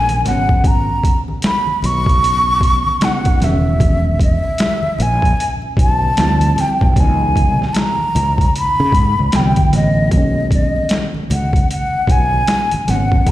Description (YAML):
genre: R&B, neo-soul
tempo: 76 BPM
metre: 4/4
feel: swing 62% on 16ths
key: B major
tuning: A4 = 440 Hz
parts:
  - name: breathy concert flute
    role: melody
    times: 0.0-13.3 s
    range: D#5 to C#6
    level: -17 LUFS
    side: equal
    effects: slapback echo
  - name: mellow FM electric piano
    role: accompaniment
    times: 0.0-13.3 s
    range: C#3 to E4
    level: -23 LUFS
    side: equal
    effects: chorus, slapback echo
  - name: fretless electric bass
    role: bass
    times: 0.0-13.3 s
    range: E1 to C#3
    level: -17 LUFS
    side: equal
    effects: none
  - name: boom bap sampler-style drum kit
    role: drums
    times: 0.1-13.3 s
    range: hi-hat, kick drum, snare drum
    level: -16 LUFS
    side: equal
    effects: overdrive
  - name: congas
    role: percussion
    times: 0.1-13.3 s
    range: none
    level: -27 LUFS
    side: left 1 dB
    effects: none
room: digital ambience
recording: live gig heard through the venue's PA, recital hall reverb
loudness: -13 LUFS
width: side -14 dB against mid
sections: 0.0-13.3 A section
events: none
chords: 0.2 G#m7; 3.4 E6; 6.2 Dm7; 7.0 C#m7; 9.3 Cmaj9; 10.1 Bmaj9